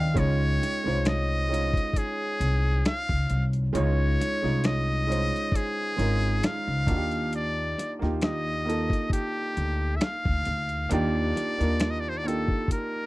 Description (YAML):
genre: R&B, neo-soul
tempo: 67 BPM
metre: 4/4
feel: swing 54% on 16ths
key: Db major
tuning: A4 = 440 Hz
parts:
  - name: trumpet with metal mute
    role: melody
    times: 0.0-13.1 s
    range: G4 to F5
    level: -30 LUFS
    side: left 1 dB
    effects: slapback echo
  - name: clear concert grand piano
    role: accompaniment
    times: 0.0-13.1 s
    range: G3 to G5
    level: -30 LUFS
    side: right 2 dB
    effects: none
  - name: upright bass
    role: bass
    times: 0.0-12.5 s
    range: Ab1 to Eb3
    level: -27 LUFS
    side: equal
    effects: none
  - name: dusty soul sampler-style drum kit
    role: drums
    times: 0.2-12.9 s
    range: finger snaps, hi-hat, kick drum, snare drum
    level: -28 LUFS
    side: equal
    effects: none
room: little or no reverb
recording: dry, close 1970s-style studio recording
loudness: -24 LUFS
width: side -19 dB against mid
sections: 0.2-13.1 A section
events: drum fill 0.0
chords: 0.2 Dbmaj9; 6.9 Ebmaj9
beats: | 0.16 1.05 1.95 2.84 | 3.74 4.63 5.53 6.42 | 7.32 8.21 9.11 10.01 | 10.90 11.80 12.69